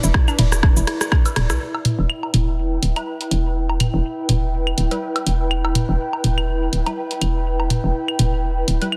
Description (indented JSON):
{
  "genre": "minimal techno",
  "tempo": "123 BPM",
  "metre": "4/4",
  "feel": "swing 56% on 16ths",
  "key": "E minor",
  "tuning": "A4 = 435 Hz",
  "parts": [
    { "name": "hollow square pluck", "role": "riff", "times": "0.0-1.5 s", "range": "D4 to B4", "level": "-32 LUFS", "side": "equal", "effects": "chorus, phaser, vintage 12-bit sampler grit, sidechain pumping, tape echo" },
    { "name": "hollow knocking FM bass", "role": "bass", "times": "0.0-8.8 s", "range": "D1 to B1", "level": "-22 LUFS", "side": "equal", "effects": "sidechain pumping" },
    { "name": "house drum kit", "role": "drums", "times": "0.0-8.9 s", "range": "hi-hat, ride cymbal, rim click, shaker", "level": "-26 LUFS", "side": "equal", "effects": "soft clipping on snare" },
    { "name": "airy breathy pad", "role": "texture", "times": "0.0-9.0 s", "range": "E4 to G5", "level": "-29 LUFS", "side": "equal", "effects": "chorus, sidechain pumping" },
    { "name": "electronic kick drum", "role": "drums", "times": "0.1-1.2 s", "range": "none", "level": "-17 LUFS", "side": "equal", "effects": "none" },
    { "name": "electronic claves, woodblock and toms", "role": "percussion", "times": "0.3-9.0 s", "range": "none", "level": "-25 LUFS", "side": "equal", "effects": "dub echo" },
    { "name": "filtered dub chord stab", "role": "stabs", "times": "3.0-8.9 s", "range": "G3 to B4", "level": "-32 LUFS", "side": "equal", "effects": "phaser, analog chorus, dub echo" }
  ],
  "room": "light reverb, digital ambience",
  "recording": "dense, heavily limited modern master",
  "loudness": "-20 LUFS",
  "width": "mono",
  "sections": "0.0-1.6 A section; 1.6-9.0 B section",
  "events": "drop 0.0-1.6; drum fill 0.6-1.6",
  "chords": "0.0 E5; 1.6 Em",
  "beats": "0.14 0.63 1.12 | 1.61 2.09 2.58 3.07 | 3.56 4.04 4.53 5.02 | 5.51 6.00 6.48 6.97 | 7.46 7.95 8.44 8.92"
}